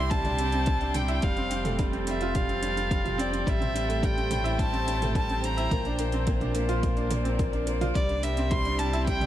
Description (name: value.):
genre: piano and strings electronica.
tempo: 107 BPM.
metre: 4/4.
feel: straight.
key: A phrygian.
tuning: A4 = 441 Hz.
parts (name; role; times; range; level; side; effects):
dark violin; melody; 0.0-9.3 s; D5 to C6; -32 LUFS; equal; ping-pong delay.
dark string quartet; sustained chords; 0.0-9.3 s; A2 to G5; -33 LUFS; right 1 dB; sidechain pumping.
bright upright piano; riff; 0.0-9.3 s; G3 to F4; -30 LUFS; right 1 dB; none.
round analog bass; bass; 0.0-9.3 s; F1 to C2; -30 LUFS; equal; tube saturation, sidechain pumping.
deep house drum kit; drums; 0.1-9.3 s; hi-hat, toms; -38 LUFS; right 2 dB; overdrive, studio reverb.
electronic kick drum; drums; 0.1-9.2 s; none; -29 LUFS; equal; overdrive, studio reverb.
room: light reverb, small room ambience.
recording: none.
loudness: -24 LUFS.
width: side -12 dB against mid.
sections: 0.0-9.3 A section.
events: none.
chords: 0.0 Cadd9; 1.2 Fadd9; 3.5 Am7; 5.7 Bbadd9; 8.0 Cadd9.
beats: 0.10 0.66 | 1.22 1.78 2.35 2.91 | 3.47 4.03 4.59 5.15 | 5.71 6.27 6.83 7.39 | 7.95 8.51 9.07.